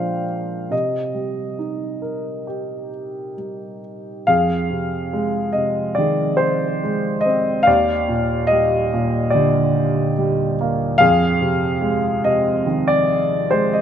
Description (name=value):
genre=classical, lyrical solo piano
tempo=71 BPM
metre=4/4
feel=rubato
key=C minor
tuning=A4 = 440 Hz
part: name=dark baby grand piano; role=solo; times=0.0-13.8 s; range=Eb2 to G5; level=-17 LUFS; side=equal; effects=none
room=light reverb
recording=close, detailed microphones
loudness=-17 LUFS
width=side -9 dB against mid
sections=0.0-4.3 A section; 4.3-13.8 B section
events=none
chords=0.0 Bb7; 0.7 Cm7; 4.3 Fm7; 7.7 Ebmaj7; 11.0 Fm7